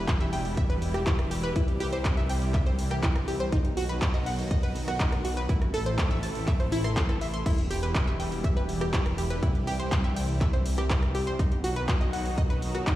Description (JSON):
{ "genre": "progressive house", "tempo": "122 BPM", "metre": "4/4", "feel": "straight", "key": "E harmonic minor", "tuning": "A4 = 440 Hz", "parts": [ { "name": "supersaw pad", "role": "sustained chords", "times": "0.0-13.0 s", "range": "B2 to A4", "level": "-35 LUFS", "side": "equal", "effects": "phaser, sidechain pumping" }, { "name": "dark detuned saw bass", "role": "bass", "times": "0.0-13.0 s", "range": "E1 to C2", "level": "-31 LUFS", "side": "equal", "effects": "sidechain pumping" }, { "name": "deep house drum kit", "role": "drums", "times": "0.1-13.0 s", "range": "crash cymbal, handclaps, hi-hat, rim click", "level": "-35 LUFS", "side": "equal", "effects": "overdrive, small room ambience" }, { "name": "electronic kick drum", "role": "drums", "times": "0.1-13.0 s", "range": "none", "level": "-26 LUFS", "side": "equal", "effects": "overdrive, small room ambience" }, { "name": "analog pluck", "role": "arpeggios", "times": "0.2-12.9 s", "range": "D#4 to C6", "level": "-33 LUFS", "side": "equal", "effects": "chorus, vintage 12-bit sampler grit, sidechain pumping, tape echo" } ], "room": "digital ambience", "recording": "played on a big sound system in a bare room, stone room reverb", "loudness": "-25 LUFS", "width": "side -14 dB against mid", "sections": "0.0-13.0 A section", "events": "none", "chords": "0.0 Em; 1.6 C; 3.5 B; 5.5 Am; 7.5 Em; 9.4 C; 11.4 B" }